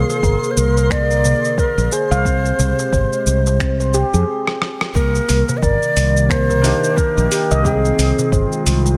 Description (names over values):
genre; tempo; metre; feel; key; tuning
organic downtempo; 89 BPM; 4/4; swing 58% on 16ths; C minor; A4 = 445 Hz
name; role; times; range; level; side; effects
breathy mellow Native American-style cedar flute; melody; 0.0-8.6 s; Ab4 to Eb5; -22 LUFS; equal; delay
warbly tape-like pad; sustained chords; 0.1-9.0 s; C3 to Ab4; -29 LUFS; equal; chorus, built-in reverb, sidechain pumping
handpan; arpeggios; 0.0-8.4 s; Bb3 to F5; -24 LUFS; equal; delay
mellow fretless electric bass; bass; 0.0-9.0 s; G1 to F2; -19 LUFS; equal; sidechain pumping
twinkling granular texture; texture; 0.0-4.3 s; C5; -37 LUFS; equal; built-in reverb
dusty soul sampler-style drum kit; drums; 0.1-9.0 s; finger snaps, hi-hat, rim click, shaker; -26 LUFS; equal; overdrive
darbuka; percussion; 0.1-9.0 s; none; -30 LUFS; equal; none
electronic kick drum; drums; 0.2-8.5 s; none; -22 LUFS; equal; none
felt-muted upright piano; accompaniment; 6.6-9.0 s; Ab3 to G5; -27 LUFS; equal; sidechain pumping, delay
room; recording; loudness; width
light reverb, small room ambience; none; -16 LUFS; mono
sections
0.0-5.0 A section; 5.0-9.0 B section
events
break 4.3-5.0; drum fill 4.4-5.0; band accent 4.8-5.1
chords
0.0 Bb7; 2.3 Abmaj7; 5.0 Cm7; 7.6 Fm7